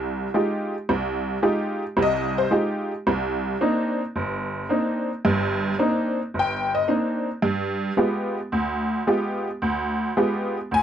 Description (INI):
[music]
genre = solo jazz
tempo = 110 BPM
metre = 4/4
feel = swing 69% on 8ths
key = C minor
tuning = A4 = 440 Hz
[part]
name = honky-tonk upright piano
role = solo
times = 0.0-10.8 s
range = G1 to Ab5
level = -22 LUFS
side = equal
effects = none
[sound]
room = light reverb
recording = dry, close 1970s-style studio recording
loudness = -22 LUFS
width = side -9 dB against mid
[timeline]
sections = 0.0-10.8 A section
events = honky-tonk piano solo 0.0-10.8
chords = 0.0 Fm9; 3.1 Cm9; 7.4 G7b9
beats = 0.33 | 0.88 1.42 1.97 2.52 | 3.06 3.61 4.15 4.70 | 5.25 5.79 6.34 6.88 | 7.43 7.98 8.52 9.07 | 9.62 10.16 10.71